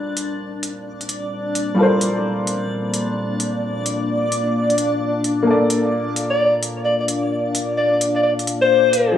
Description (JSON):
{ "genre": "future garage", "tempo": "130 BPM", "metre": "4/4", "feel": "swing 64% on 16ths", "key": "unclear", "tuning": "A4 = 440 Hz", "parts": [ { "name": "warm upright piano", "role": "accompaniment", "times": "0.0-9.2 s", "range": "F3 to D5", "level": "-22 LUFS", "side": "left 1 dB", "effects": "analog delay" }, { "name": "dark analog pad", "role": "sustained chords", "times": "0.7-9.2 s", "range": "Bb3 to A5", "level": "-26 LUFS", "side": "equal", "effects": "chorus, vintage 12-bit sampler grit" }, { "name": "backwards swelling texture", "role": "texture", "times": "0.0-9.2 s", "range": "D4 to D5", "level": "-24 LUFS", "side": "left 1 dB", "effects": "built-in reverb" }, { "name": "electronic hi-hat", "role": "drums", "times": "0.2-9.1 s", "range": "none", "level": "-25 LUFS", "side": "equal", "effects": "cassette tape" }, { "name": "breathy alto saxophone", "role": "melody", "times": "6.3-9.2 s", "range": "C5 to D5", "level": "-17 LUFS", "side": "left 2 dB", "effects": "cassette tape, tape echo" } ], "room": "moderate digital room reverb, RT60 1.1 s", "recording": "home recording on cassette, small room reverb", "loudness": "-17 LUFS", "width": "side -10 dB against mid", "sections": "0.0-9.2 A section", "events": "none", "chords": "0.0 Gm11; 5.5 Bbmaj7" }